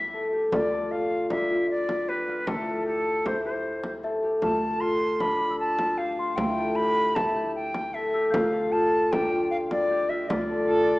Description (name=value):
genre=contemporary instrumental, chamber music in an uneven meter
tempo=153 BPM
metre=5/4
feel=straight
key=D dorian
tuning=A4 = 440 Hz
part: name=silver concert flute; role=melody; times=0.0-11.0 s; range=A4 to C6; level=-28 LUFS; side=equal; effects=none
part: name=concert harp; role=arpeggios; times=0.0-11.0 s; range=D4 to A4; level=-26 LUFS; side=left 1 dB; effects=none
part: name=upright bass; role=bass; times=0.0-11.0 s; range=D2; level=-37 LUFS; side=right 1 dB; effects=none
part: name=frame drum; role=percussion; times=0.3-11.0 s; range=none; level=-34 LUFS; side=equal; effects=none
part: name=celesta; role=texture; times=1.3-9.8 s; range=D5 to G6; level=-35 LUFS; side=left 2 dB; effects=none
part: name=warm cello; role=second line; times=10.7-11.0 s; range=A4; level=-26 LUFS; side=right 2 dB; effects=none
room=wet recital hall reverb, RT60 1.4 s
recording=small speaker sound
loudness=-23 LUFS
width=side -20 dB against mid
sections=0.0-11.0 A section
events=none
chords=0.0 A7(no3)/D; 0.5 Dm; 2.5 Am7/D; 4.4 Dm7; 6.4 A7(no3)/D; 8.3 Dm